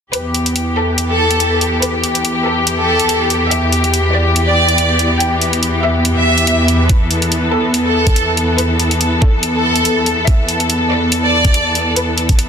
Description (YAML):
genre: heavy wobble dubstep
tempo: 142 BPM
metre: 4/4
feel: swing 55% on 16ths, half-time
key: E minor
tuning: A4 = 440 Hz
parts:
  - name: rich symphonic violin section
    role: melody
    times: 0.1-12.2 s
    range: A4 to G5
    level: -17 LUFS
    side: equal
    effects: dub echo
  - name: muted studio string section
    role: sustained chords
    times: 0.1-12.5 s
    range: E2 to A4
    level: -15 LUFS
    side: equal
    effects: sidechain pumping
  - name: electronic hi-hat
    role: drums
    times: 0.1-12.5 s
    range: none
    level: -19 LUFS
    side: left 1 dB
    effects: none
  - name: electronic kick drum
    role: drums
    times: 6.9-12.4 s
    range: none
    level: -12 LUFS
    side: equal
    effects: none
room: moderate lush hall reverb, RT60 1.7 s, studio reverb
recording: dense, heavily limited modern master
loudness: -12 LUFS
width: side -7 dB against mid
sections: 0.1-12.5 A section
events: none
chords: 0.1 Em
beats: | 0.13 0.56 0.98 1.40 | 1.82 2.25 2.67 3.09 | 3.52 3.94 4.36 4.78 | 5.21 5.63 6.05 6.47 | 6.89 7.32 7.74 8.16 | 8.59 9.01 9.43 9.85 | 10.28 10.70 11.12 11.54 | 11.96 12.39